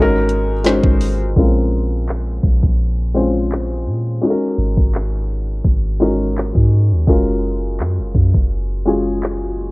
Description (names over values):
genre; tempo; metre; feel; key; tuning
contemporary R&B; 84 BPM; 4/4; swing 54% on 16ths; Bb minor; A4 = 439 Hz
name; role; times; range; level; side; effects
felt-muted upright piano; accompaniment; 0.0-9.7 s; Ab3 to D#5; -19 LUFS; left 1 dB; none
soft 808-style bass; bass; 0.0-9.7 s; Gb1 to Bb2; -18 LUFS; equal; none
smooth R&B drum kit; drums; 0.3-9.7 s; handclaps, hi-hat, kick drum, snare drum; -16 LUFS; equal; none
room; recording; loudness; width
digital ambience; worn, warbling old tape, cassette tape, warbly pitch drift, low-pass filter; -14 LUFS; side -23 dB against mid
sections
0.0-1.4 A section; 1.4-9.7 B section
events
filter sweep 1.4-9.7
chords
0.0 Ab7sus4; 1.4 Bbm9; 4.2 Ab7sus4; 7.1 Gbmaj9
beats
0.65 | 1.36 2.08 2.79 3.50 | 4.22 4.93 5.65 6.36 | 7.08 7.79 8.50 9.22